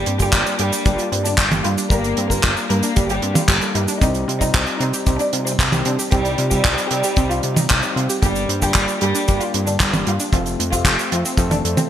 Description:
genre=italo disco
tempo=114 BPM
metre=4/4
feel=straight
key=G minor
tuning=A4 = 440 Hz
part: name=warm studio violin section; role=melody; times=0.0-11.9 s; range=G3 to Bb4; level=-24 LUFS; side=equal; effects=digital delay
part: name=overdriven tine electric piano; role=stabs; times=0.0-11.9 s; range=G3 to A4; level=-26 LUFS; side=left 2 dB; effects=auto-pan
part: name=fat analog bass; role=bass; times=0.0-11.8 s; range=F1 to C3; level=-24 LUFS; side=equal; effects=tube saturation
part: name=analog pluck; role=arpeggios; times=0.1-11.9 s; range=C3 to G4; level=-27 LUFS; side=right 3 dB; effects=chorus, ping-pong delay
part: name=damped 70s drum kit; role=drums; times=0.1-11.9 s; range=cabasa, handclaps, hi-hat, toms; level=-21 LUFS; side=right 1 dB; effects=small room ambience
part: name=kick drum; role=drums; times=0.2-11.5 s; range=none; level=-18 LUFS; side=equal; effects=small room ambience
room=light reverb, small room ambience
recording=bright 1980s-style digital production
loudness=-16 LUFS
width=side -10 dB against mid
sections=0.0-11.9 A section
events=none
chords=0.0 Gm; 4.0 Cm; 8.2 Gm; 10.3 F

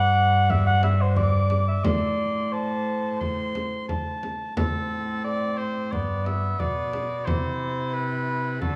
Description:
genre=classical, renaissance-style consort dance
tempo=89 BPM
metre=4/4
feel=straight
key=A dorian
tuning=A4 = 435 Hz
part: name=clear oboe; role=melody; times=0.0-8.8 s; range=A4 to D6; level=-33 LUFS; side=equal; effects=none
part: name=dark cor anglais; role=second line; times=0.0-8.8 s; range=B3 to F#5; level=-29 LUFS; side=equal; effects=none
part: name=rich cello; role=bass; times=0.0-8.8 s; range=G2 to D3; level=-28 LUFS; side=equal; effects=none
part: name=frame drum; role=percussion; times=0.5-8.8 s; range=none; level=-32 LUFS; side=equal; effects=none
room=moderate recital hall reverb, RT60 1.8 s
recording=small room ambience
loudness=-25 LUFS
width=mono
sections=0.0-4.6 A section; 4.6-8.8 B section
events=none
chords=0.0 G5; 1.8 Am; 5.9 G; 7.3 C

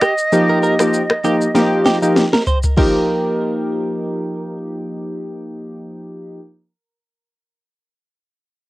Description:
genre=afrobeats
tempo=98 BPM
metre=4/4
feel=swing 55% on 16ths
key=Eb major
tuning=A4 = 440 Hz
part: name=concert flute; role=melody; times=0.0-2.2 s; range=Eb5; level=-20 LUFS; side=right 1 dB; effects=cassette tape, tape echo
part: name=direct-recorded clean electric guitar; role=riff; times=0.0-4.6 s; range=G4 to C5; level=-23 LUFS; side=right 3 dB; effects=wide subtle chorus, cassette tape, tape echo
part: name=afro-pop drum kit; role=drums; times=0.0-2.9 s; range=crash cymbal, finger snaps, kick drum, rim click, shaker, snare drum, toms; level=-17 LUFS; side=equal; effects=overdrive, cassette tape
part: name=warm analog keys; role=accompaniment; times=0.3-6.4 s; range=F3 to G4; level=-18 LUFS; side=equal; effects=chorus, cassette tape
room=light reverb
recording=home recording on cassette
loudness=-14 LUFS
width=side -18 dB against mid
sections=0.0-2.8 A section; 2.8-5.2 B section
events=drum fill 1.6-2.8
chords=0.0 Ebadd9

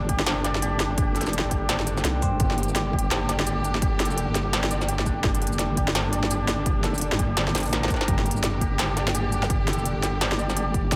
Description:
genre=half-time drum and bass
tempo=169 BPM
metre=4/4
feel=swing 60% on 16ths, half-time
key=G minor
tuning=A4 = 441 Hz
part: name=rich studio string section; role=sustained chords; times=0.0-11.0 s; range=D3 to G4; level=-34 LUFS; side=equal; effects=sidechain pumping
part: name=santur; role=arpeggios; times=0.0-11.0 s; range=D4 to G5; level=-32 LUFS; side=equal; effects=digital delay
part: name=deep soft wobble bass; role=bass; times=0.0-11.0 s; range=F1 to G2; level=-30 LUFS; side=equal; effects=chorus, tube saturation
part: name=electronic kick drum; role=drums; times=0.1-11.0 s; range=none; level=-29 LUFS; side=equal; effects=none
part: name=industrial drum kit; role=drums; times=0.1-11.0 s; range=hi-hat, shaker, snare drum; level=-30 LUFS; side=equal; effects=none
room=light reverb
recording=none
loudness=-24 LUFS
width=mono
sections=0.0-11.0 A section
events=drum fill 7.5-8.1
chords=0.0 Gm

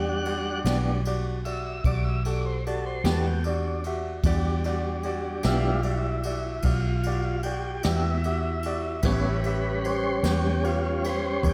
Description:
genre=slow blues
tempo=50 BPM (dotted quarters)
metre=12/8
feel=straight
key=unclear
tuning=A4 = 440 Hz
part: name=clear upright piano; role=accompaniment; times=0.0-11.5 s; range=F#4 to E5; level=-35 LUFS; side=equal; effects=lush chorus
part: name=tonewheel organ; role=sustained chords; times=0.0-11.5 s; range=G3 to F#5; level=-32 LUFS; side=equal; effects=slow rotary speaker
part: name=vintage muted fingered electric bass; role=bass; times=0.0-11.5 s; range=A1 to E2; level=-30 LUFS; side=equal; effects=none
part: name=jazz brush drum kit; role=drums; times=0.3-11.5 s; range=kick drum, ride cymbal, snare drum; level=-35 LUFS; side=equal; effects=none
part: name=electric guitar through a small old amp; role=accompaniment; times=0.7-10.5 s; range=A2 to G4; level=-36 LUFS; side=equal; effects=tremolo
room=moderate plate reverb, RT60 2.1 s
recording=dreamy mix soaked in reverb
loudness=-26 LUFS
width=mono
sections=0.0-11.5 A section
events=tonewheel organ solo 0.0-11.5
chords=0.0 Em7; 9.0 A9

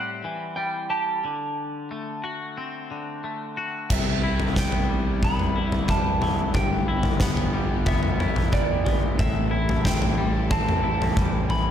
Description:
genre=post-rock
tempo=91 BPM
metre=4/4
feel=straight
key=C lydian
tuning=A4 = 440 Hz
part: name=electric guitar through a small old amp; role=melody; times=0.0-11.7 s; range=D5 to B5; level=-30 LUFS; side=right 2 dB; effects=spring reverb, slapback echo
part: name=twangy electric guitar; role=arpeggios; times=0.0-11.7 s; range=G2 to G4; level=-30 LUFS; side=left 3 dB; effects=lush chorus, slapback echo
part: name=clear symphonic string section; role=sustained chords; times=3.9-11.7 s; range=C3 to A4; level=-37 LUFS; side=equal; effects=none
part: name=fuzz picked electric bass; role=bass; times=3.9-11.7 s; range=G1 to C2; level=-27 LUFS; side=equal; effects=overdrive
part: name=huge arena drum kit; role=drums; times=3.9-11.7 s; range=crash cymbal, kick drum, snare drum, toms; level=-23 LUFS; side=equal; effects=none
room=light reverb, small room ambience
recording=none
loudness=-22 LUFS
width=side -9 dB against mid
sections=0.0-3.9 A section; 3.9-11.7 B section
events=none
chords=0.0 Am7; 1.2 D7; 3.9 Cmaj7; 6.6 G6; 9.2 Am7

